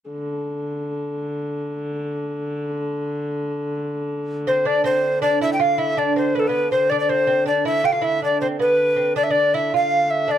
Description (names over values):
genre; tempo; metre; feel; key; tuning
medieval dance; 106 BPM (dotted quarters); 6/8; straight; D dorian; A4 = 437 Hz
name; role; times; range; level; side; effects
dark hurdy-gurdy; drone; 0.1-10.4 s; D3; -27 LUFS; left 1 dB; none
breathy tenor recorder; melody; 4.5-10.4 s; A4 to G5; -18 LUFS; left 2 dB; plate reverb
lute; second line; 4.5-10.4 s; B3 to F4; -23 LUFS; right 6 dB; none
room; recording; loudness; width
moderate booth ambience, RT60 0.2 s; dark, warm production; -19 LUFS; side -10 dB against mid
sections
0.1-4.6 A section; 4.6-10.4 B section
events
none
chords
none